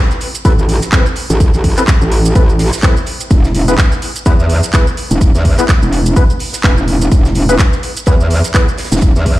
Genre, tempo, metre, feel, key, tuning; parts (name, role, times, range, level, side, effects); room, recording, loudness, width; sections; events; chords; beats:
bass house; 126 BPM; 4/4; swing 57% on 16ths; A4 = 440 Hz
damped 70s drum kit; drums; 0.1-9.4 s; hi-hat, snare drum; -30 LUFS; right 2 dB
house drum kit; drums; 0.1-9.4 s; handclaps, hi-hat, shaker; -19 LUFS; right 1 dB
percussive organ stab; stabs; 0.5-8.7 s; B3 to B4; -19 LUFS; left 2 dB; ensemble chorus, sidechain pumping, dub echo
metallic wobble bass; bass; 0.5-9.4 s; E1 to E2; -12 LUFS; equal; chorus, tube saturation, sidechain pumping
electronic kick drum; drums; 0.5-9.4 s; -10 LUFS; equal
little or no reverb; played on a big sound system in a bare room, stone room reverb; -9 LUFS; side -16 dB against mid
0.0-9.4 A section
0.0 Amadd9; 3.3 E
0.45 0.93 | 1.40 1.88 2.35 2.83 | 3.31 3.78 4.26 4.74 | 5.21 5.69 6.16 6.64 | 7.12 7.59 8.07 8.54 | 9.02